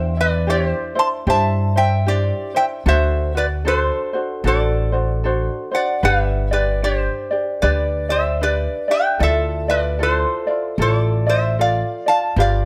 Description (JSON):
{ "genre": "Hawaiian", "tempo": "76 BPM", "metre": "4/4", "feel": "swing 61% on 8ths", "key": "unclear", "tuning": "A4 = 443 Hz", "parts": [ { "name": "metal-body resonator slide guitar", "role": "melody", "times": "0.0-12.7 s", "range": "G4 to C6", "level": "-22 LUFS", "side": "equal", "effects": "none" }, { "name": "ukulele", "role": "accompaniment", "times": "0.0-12.7 s", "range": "D4 to D5", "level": "-26 LUFS", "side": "equal", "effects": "none" }, { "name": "upright bass", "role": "bass", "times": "0.0-12.7 s", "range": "G1 to G2", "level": "-22 LUFS", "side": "equal", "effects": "none" } ], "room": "light reverb", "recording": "close, detailed microphones", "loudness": "-19 LUFS", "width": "mono", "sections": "0.0-12.7 A section", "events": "none", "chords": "0.0 Cadd9/E; 2.9 D7; 6.0 G; 9.2 Dmadd9" }